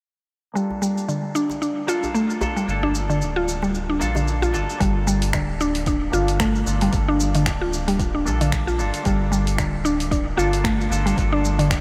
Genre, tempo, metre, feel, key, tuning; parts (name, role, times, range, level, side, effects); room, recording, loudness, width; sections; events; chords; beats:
organic downtempo; 113 BPM; 4/4; swing 57% on 16ths; G minor; A4 = 440 Hz
semi-hollow electric guitar; accompaniment; 0.5-11.8 s; Bb3 to A4; -32 LUFS; equal; subtle chorus, sidechain pumping, low-pass filter, diffuse ambient delay
mallet-like synth pluck; arpeggios; 0.6-11.7 s; D3 to F4; -25 LUFS; equal; chorus, diffuse ambient delay
deep house drum kit; drums; 0.6-11.8 s; finger snaps, hi-hat, shaker; -33 LUFS; equal
djembe; percussion; 0.7-4.8 s; -36 LUFS; equal
round analog bass; bass; 2.7-11.8 s; D1 to Bb1; -26 LUFS; equal; sidechain pumping
electronic kick drum; drums; 4.8-11.8 s; -28 LUFS; equal
moderate huge ambient reverb, RT60 7.8 s; dreamy mix soaked in reverb; -22 LUFS; mono
0.6-4.8 A section; 4.8-11.8 B section
filter sweep on synth pluck 0.6-4.8; filter sweep on clean electric guitar 0.6-4.8, 4.8-11.8
0.6 Gm7
| 0.56 1.09 1.62 2.15 | 2.68 3.21 3.74 4.28 | 4.81 5.34 5.87 6.40 | 6.93 7.46 7.99 8.52 | 9.05 9.59 10.12 10.65 | 11.18 11.71